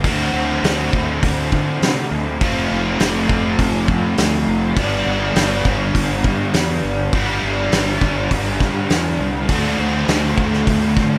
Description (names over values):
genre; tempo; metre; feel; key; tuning
rock, shoegaze and dream pop; 102 BPM; 4/4; straight; G major; A4 = 445 Hz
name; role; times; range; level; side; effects
overdriven electric guitar; riff; 0.0-11.2 s; G2 to F#4; -21 LUFS; equal; analog chorus
fuzz fingered electric bass; bass; 0.0-11.2 s; F1 to D3; -25 LUFS; equal; overdrive
loose indie drum kit; drums; 0.0-11.1 s; hi-hat, kick drum, snare drum; -23 LUFS; equal; none
room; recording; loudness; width
moderate studio reverb, RT60 0.6 s; none; -18 LUFS; mono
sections
0.0-11.2 A section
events
none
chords
0.0 D7; 2.4 F; 4.8 G; 9.5 D7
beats
| 0.04 0.63 1.22 1.81 | 2.40 3.00 3.59 4.18 | 4.77 5.36 5.95 6.54 | 7.13 7.72 8.31 8.90 | 9.49 10.08 10.67